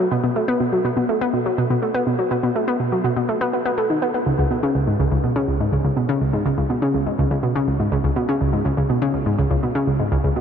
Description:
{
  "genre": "ambient",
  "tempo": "123 BPM",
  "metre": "4/4",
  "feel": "straight",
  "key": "unclear",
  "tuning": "A4 = 439 Hz",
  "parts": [
    { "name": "analog pluck", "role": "solo", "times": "0.0-10.4 s", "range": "C#2 to B3", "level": "-18 LUFS", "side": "equal", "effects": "chorus, ping-pong delay" }
  ],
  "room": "wet huge ambient reverb, RT60 8.5 s",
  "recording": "dark, warm production",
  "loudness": "-18 LUFS",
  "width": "side -7 dB against mid",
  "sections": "0.0-10.4 A section",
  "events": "none",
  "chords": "none",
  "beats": "| 0.36 0.85 1.34 1.82 | 2.31 2.80 3.29 3.77 | 4.26 4.75 5.24 5.73 | 6.21 6.70 7.19 7.68 | 8.16 8.65 9.14 9.63 | 10.12"
}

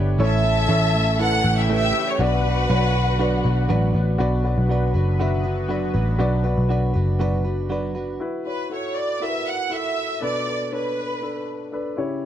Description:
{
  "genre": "piano-driven pop",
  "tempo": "120 BPM",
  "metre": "4/4",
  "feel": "straight",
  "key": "B minor",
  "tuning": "A4 = 440 Hz",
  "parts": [
    { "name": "warm concert grand piano", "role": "accompaniment", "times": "0.0-12.3 s", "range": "A2 to E5", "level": "-27 LUFS", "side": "left 2 dB", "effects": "none" },
    { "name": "sweeping resonant pad", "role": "sustained chords", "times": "0.0-8.2 s", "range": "C#3 to B4", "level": "-33 LUFS", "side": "left 1 dB", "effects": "chorus" },
    { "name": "direct-recorded clean electric guitar", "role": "riff", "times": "0.0-8.2 s", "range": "A2 to B4", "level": "-28 LUFS", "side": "right 6 dB", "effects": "none" },
    { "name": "vintage muted picked electric bass", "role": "bass", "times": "0.0-8.2 s", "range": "F#1 to B1", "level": "-20 LUFS", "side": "equal", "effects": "none" },
    { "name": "clear studio violin section", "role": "melody", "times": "0.2-3.7, 8.5-11.4 s", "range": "B4 to F#5", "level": "-24 LUFS", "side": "right 1 dB", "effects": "none" },
    { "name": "warm studio violin section", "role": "second line", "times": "0.2-4.2 s", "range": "F#4 to A5", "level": "-29 LUFS", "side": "left 2 dB", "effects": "ping-pong delay" }
  ],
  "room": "light reverb",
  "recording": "dark, warm production",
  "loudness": "-19 LUFS",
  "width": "side -10 dB against mid",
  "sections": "0.0-4.2 A section; 4.2-8.2 B section; 8.2-12.3 C section",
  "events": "none",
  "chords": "0.2 A; 2.2 Bm; 8.2 F#7sus4; 10.2 Bm7",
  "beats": "| 0.20 0.69 1.20 1.70 | 2.20 2.70 3.20 3.70 | 4.20 4.70 5.20 5.70 | 6.20 6.70 7.21 7.71 | 8.21 8.71 9.21 9.71 | 10.22 10.72 11.22 11.72 | 12.22"
}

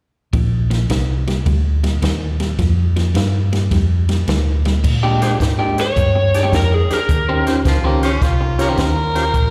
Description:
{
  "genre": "electric blues shuffle",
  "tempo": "107 BPM",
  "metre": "4/4",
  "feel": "swing 67% on 8ths",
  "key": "unclear",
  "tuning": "A4 = 438 Hz",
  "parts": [
    { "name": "electric guitar through a small old amp", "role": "riff", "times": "0.3-9.0 s", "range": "Bb2 to C5", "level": "-24 LUFS", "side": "equal", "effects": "slapback echo" },
    { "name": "vintage muted fingered electric bass", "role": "bass", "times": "0.3-9.5 s", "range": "Bb1 to Bb2", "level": "-19 LUFS", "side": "equal", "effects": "none" },
    { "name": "compact cocktail drum kit", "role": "drums", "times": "0.3-9.5 s", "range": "crash cymbal, hi-hat, kick drum, ride cymbal, snare drum", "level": "-24 LUFS", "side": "equal", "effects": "slapback echo" },
    { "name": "tonewheel organ", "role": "accompaniment", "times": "5.2-9.2 s", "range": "Db4 to D5", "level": "-27 LUFS", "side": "equal", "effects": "slow rotary speaker, overdrive, slapback echo" },
    { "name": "lead guitar through a small cranked amp", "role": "melody", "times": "5.8-7.5 s", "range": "Ab4 to Db5", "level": "-21 LUFS", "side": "equal", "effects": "overdrive, slapback echo" },
    { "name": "growling tenor saxophone", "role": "second line", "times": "7.7-9.5 s", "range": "F3 to Bb4", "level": "-23 LUFS", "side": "equal", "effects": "slapback echo, digital delay" }
  ],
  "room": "small room ambience",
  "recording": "live gig heard through the venue's PA, recital hall reverb",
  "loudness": "-17 LUFS",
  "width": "mono",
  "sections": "0.3-4.8 A section; 4.8-9.5 B section",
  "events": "none",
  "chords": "0.3 Bb; 4.8 Bb13; 7.1 Eb13",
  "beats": "| 0.33 0.90 1.46 2.02 | 2.59 3.15 3.71 4.28 | 4.84 5.40 5.97 6.53 | 7.09 7.65 8.22 8.78 | 9.34"
}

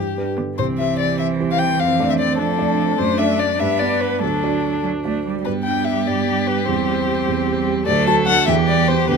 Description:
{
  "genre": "quick classical-period movement for piano quintet",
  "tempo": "99 BPM (dotted quarters)",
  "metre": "6/8",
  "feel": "straight",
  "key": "G major",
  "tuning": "A4 = 441 Hz",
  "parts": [
    { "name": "dark violin", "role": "melody", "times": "0.0-9.2 s", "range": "G4 to A5", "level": "-21 LUFS", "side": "left 9 dB", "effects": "none" },
    { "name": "warm baby grand piano", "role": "accompaniment", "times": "0.0-9.2 s", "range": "C2 to D5", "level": "-22 LUFS", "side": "right 4 dB", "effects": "none" },
    { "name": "rich cello", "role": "second line", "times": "0.4-9.2 s", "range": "D3 to B3", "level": "-24 LUFS", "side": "right 9 dB", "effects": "none" },
    { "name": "warm viola", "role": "accompaniment", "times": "0.4-9.2 s", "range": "A3 to D4", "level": "-25 LUFS", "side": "right 3 dB", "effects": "none" },
    { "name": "warm violin", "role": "second line", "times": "5.5-9.2 s", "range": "G4 to A4", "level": "-24 LUFS", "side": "left 3 dB", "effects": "none" }
  ],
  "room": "light reverb",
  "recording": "close, detailed microphones",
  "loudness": "-16 LUFS",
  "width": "side -5 dB against mid",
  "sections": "0.0-5.5 A section; 5.5-9.2 B section",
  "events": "none",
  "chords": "0.0 G; 0.6 C; 1.8 Dm/F; 3.0 D/F#; 3.6 G; 4.2 D; 5.5 G; 6.7 C/E; 7.9 D; 8.5 Em",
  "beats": "| 0.58 1.19 | 1.79 2.39 | 2.99 3.60 | 4.21 4.83 | 5.46 6.07 | 6.67 7.27 | 7.87 8.47 | 9.08"
}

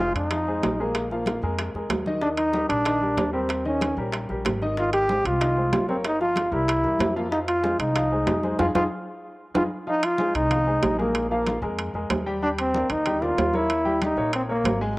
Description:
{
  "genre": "latin, salsa",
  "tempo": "188 BPM",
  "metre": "4/4",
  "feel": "straight",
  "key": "F minor",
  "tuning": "A4 = 440 Hz",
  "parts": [
    { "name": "bright trombone", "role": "melody", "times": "0.0-14.8 s", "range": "Bb3 to G4", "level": "-24 LUFS", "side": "equal", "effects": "none" },
    { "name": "clear concert grand piano", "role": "accompaniment", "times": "0.0-14.9 s", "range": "Eb3 to Ab5", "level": "-30 LUFS", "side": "left 1 dB", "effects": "cassette tape" },
    { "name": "upright bass", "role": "bass", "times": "0.0-15.0 s", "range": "F1 to F2", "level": "-30 LUFS", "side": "equal", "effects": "none" },
    { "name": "timbales", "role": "percussion", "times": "0.0-14.8 s", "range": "none", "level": "-29 LUFS", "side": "right 3 dB", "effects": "none" },
    { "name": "congas", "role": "percussion", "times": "0.1-14.8 s", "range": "none", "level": "-33 LUFS", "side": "left 1 dB", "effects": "none" },
    { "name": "bongos", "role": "percussion", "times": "0.3-9.6 s", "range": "none", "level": "-36 LUFS", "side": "left 3 dB", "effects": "none" }
  ],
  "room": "moderate spring reverb, RT60 2.2 s",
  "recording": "home recording on cassette",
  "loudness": "-21 LUFS",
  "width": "side -21 dB against mid",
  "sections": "0.0-9.9 A section; 9.9-15.0 A section",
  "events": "drum fill 8.6-9.9; band accent 8.6-9.9",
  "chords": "0.0 Fm7; 0.9 Bb5; 2.2 Ebmaj7; 3.5 Eb7; 4.8 Ab6; 6.0 Gm7b5; 6.7 C7; 7.3 Fm7; 11.1 Bb5; 12.4 Ebmaj7; 13.7 Eb7b9",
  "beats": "0.31 0.63 | 0.95 1.27 1.58 1.90 | 2.22 2.54 2.86 3.18 | 3.49 3.81 4.13 4.45 | 4.77 5.09 5.41 5.72 | 6.04 6.36 6.68 7.00 | 7.32 7.64 7.96 8.27 | 8.59 8.91 9.23 9.55 | 9.87 10.19 10.51 10.82 | 11.14 11.46 11.78 12.10 | 12.42 12.74 13.06 13.38 | 13.70 14.02 14.33 14.65 | 14.97"
}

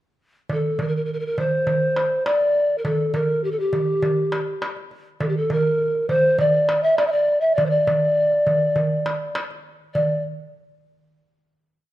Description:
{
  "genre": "Turkish makam ensemble",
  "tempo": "102 BPM",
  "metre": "4/4",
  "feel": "straight",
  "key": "D makam ussak",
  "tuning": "A4 = 440 Hz",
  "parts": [
    { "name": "mellow hollow polished pan flute", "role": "melody", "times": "0.5-10.2 s", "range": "G4 to E5-28c", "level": "-19 LUFS", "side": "equal", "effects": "none" },
    { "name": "darbuka", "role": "percussion", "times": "0.5-10.2 s", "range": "none", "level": "-25 LUFS", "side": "right 2 dB", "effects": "none" }
  ],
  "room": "moderate recital hall reverb, RT60 1.4 s",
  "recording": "minimal, uncompressed stereo recording",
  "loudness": "-18 LUFS",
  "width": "side -14 dB against mid",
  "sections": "0.5-9.9 A section; 9.9-11.9 final note",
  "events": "none",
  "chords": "none",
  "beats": "| 0.50 1.09 1.68 2.27 | 2.86 3.44 4.03 4.62 | 5.21 5.80 6.40 6.99 | 7.58 8.17 8.76 9.36 | 9.95"
}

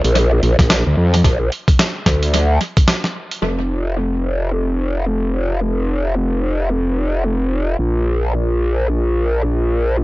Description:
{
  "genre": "glitch hop",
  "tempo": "110 BPM",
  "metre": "4/4",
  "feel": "swing 60% on 16ths",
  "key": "unclear",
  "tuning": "A4 = 440 Hz",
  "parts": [
    { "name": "growl bass", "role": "bass", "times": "0.0-10.0 s", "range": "F1 to F2", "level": "-16 LUFS", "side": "equal", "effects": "chorus, overdrive" },
    { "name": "boom bap sampler-style drum kit", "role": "drums", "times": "0.0-3.4 s", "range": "hi-hat, snare drum", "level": "-19 LUFS", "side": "equal", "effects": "small room ambience, analog delay" },
    { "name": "electronic kick drum", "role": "drums", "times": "0.6-2.9 s", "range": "none", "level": "-14 LUFS", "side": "equal", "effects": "small room ambience" }
  ],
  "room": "digital ambience",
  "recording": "echo-heavy mix, nothing above 7.4 kHz",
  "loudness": "-15 LUFS",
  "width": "side -19 dB against mid",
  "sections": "0.0-3.4 A section; 3.4-10.0 B section",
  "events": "break 2.9-3.4",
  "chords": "none",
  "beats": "0.15 0.70 | 1.24 1.79 2.33 2.88 | 3.42 3.97 4.51 5.06 | 5.61 6.15 6.70 7.24 | 7.79 8.33 8.88 9.42 | 9.97"
}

